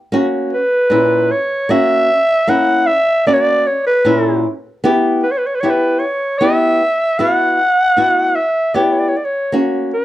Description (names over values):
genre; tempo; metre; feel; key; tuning
klezmer; 77 BPM; 3/4; straight; unclear; A4 = 439 Hz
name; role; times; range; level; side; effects
flamenco guitar; accompaniment; 0.1-9.9 s; A#2 to G4; -15 LUFS; left 1 dB; none
growling clarinet; melody; 0.5-10.0 s; B4 to F#5; -14 LUFS; equal; plate reverb
room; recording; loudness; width
moderate studio reverb, RT60 0.6 s; worn, warbling old tape, cassette tape, warbly pitch drift; -12 LUFS; side -14 dB against mid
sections
0.1-10.0 A section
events
none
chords
0.1 F#; 4.8 Em; 9.5 F#